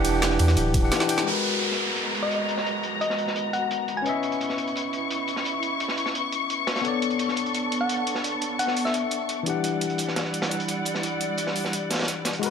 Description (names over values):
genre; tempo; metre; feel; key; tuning
liquid drum and bass; 172 BPM; 4/4; straight; unclear; A4 = 441 Hz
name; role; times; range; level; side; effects
overdriven tine electric piano; accompaniment; 0.0-12.5 s; E3 to G5; -28 LUFS; moving between left 7 dB and right 7 dB; auto-pan, digital delay
dark symphonic string section; sustained chords; 0.0-12.5 s; G3 to C#6; -29 LUFS; left 2 dB; sidechain pumping, low-pass filter
warm sub bass; bass; 0.0-0.9 s; D1 to E2; -23 LUFS; equal; none
drum and bass drum kit; drums; 0.0-12.5 s; hi-hat, ride cymbal, snare drum; -30 LUFS; right 1 dB; overdrive, low-pass filter on hats, studio reverb, low-pass filter on cymbals, low-pass filter on snare
crunchy breakbeat drum kit; drums; 0.1-12.5 s; hi-hat, snare drum; -32 LUFS; right 1 dB; high-pass filter on hats, low-pass filter on hats, studio reverb, high-pass filter on snare, low-pass filter on snare, high-pass filter on room, low-pass filter on room
electronic kick drum; drums; 0.7-0.8 s; none; -24 LUFS; equal; overdrive, studio reverb
downlifter; sound effects; 1.3-4.1 s; none; -29 LUFS; right 1 dB; none
thumb-piano-like synth pluck; melody; 2.2-4.1, 7.8-9.1 s; D#5 to G#5; -29 LUFS; left 2 dB; chorus, cassette tape, digital delay
room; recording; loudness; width
moderate digital room reverb, RT60 1.1 s, small room reverb; none; -23 LUFS; side -7 dB against mid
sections
0.0-1.3 A section; 1.3-12.4 B section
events
drop 0.0-1.3; kick drops out 0.9-1.3; drum fill 0.9-1.3; band accent 1.2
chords
0.0 Em9; 1.3 G#m9; 4.1 C#m9; 6.8 Bm9; 9.5 Em9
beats
0.22 0.57 0.92 | 1.27 1.61 1.96 2.31 | 2.66 3.01 3.36 3.71 | 4.06 4.41 4.75 5.10 | 5.45 5.80 6.15 6.50 | 6.85 7.20 7.54 7.89 | 8.24 8.59 8.94 9.29 | 9.64 9.99 10.34 10.69 | 11.03 11.38 11.73 12.08 | 12.43